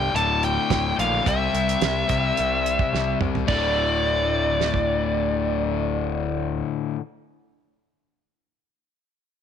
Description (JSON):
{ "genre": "classic rock", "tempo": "108 BPM", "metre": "4/4", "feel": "straight", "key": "unclear", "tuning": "A4 = 441 Hz", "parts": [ { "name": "nasal lead guitar with a parked wah", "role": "melody", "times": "0.0-6.5 s", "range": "D5 to A5", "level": "-24 LUFS", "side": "right 1 dB", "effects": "overdrive" }, { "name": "cranked stack guitar", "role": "riff", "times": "0.0-7.0 s", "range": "D2 to C4", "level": "-25 LUFS", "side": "left 11 dB", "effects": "overdrive" }, { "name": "growling picked electric bass", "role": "bass", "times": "0.0-6.6 s", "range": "D1 to C2", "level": "-28 LUFS", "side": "right 1 dB", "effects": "overdrive" }, { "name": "damped 70s drum kit", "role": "drums", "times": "0.2-4.9 s", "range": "crash cymbal, hi-hat, kick drum, snare drum, toms", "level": "-27 LUFS", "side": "right 5 dB", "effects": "none" } ], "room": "studio ambience", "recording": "1960s-style stereo", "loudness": "-20 LUFS", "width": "side -8 dB against mid", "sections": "0.0-3.5 A section; 3.5-5.7 B section", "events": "drum fill 2.9-3.5", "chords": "0.1 D5; 1.3 C; 3.5 D5" }